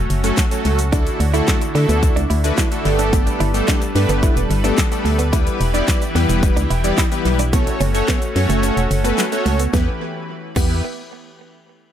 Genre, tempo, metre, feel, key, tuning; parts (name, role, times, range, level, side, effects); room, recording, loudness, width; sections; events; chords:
dance-pop; 109 BPM; 4/4; straight; E dorian; A4 = 439 Hz
lush unison pad; sustained chords; 0.0-10.0 s; D3 to B4; -26 LUFS; equal; chorus, sidechain pumping
organ-like FM bass; bass; 0.0-10.8 s; E1 to D3; -18 LUFS; equal; sidechain pumping
pop drum kit; drums; 0.1-10.7 s; crash cymbal, handclaps, hi-hat, kick drum, shaker, snare drum; -20 LUFS; equal; tape echo
big bright polysynth; accompaniment; 0.2-10.8 s; F#3 to D5; -22 LUFS; left 1 dB; chorus, sidechain pumping
egg shaker; percussion; 0.2-10.8 s; -35 LUFS; left 12 dB
direct-recorded clean electric guitar; riff; 0.9-10.7 s; A3 to E4; -26 LUFS; right 6 dB; wide subtle chorus, tape echo
light reverb; echo-heavy mix; -15 LUFS; side -10 dB against mid
0.0-9.7 A section; 9.7-11.9 B section
kick muted 8.6-9.7
0.0 F#m; 0.9 Dadd9; 2.9 Gadd9; 5.3 Em; 7.5 F#m; 9.7 Em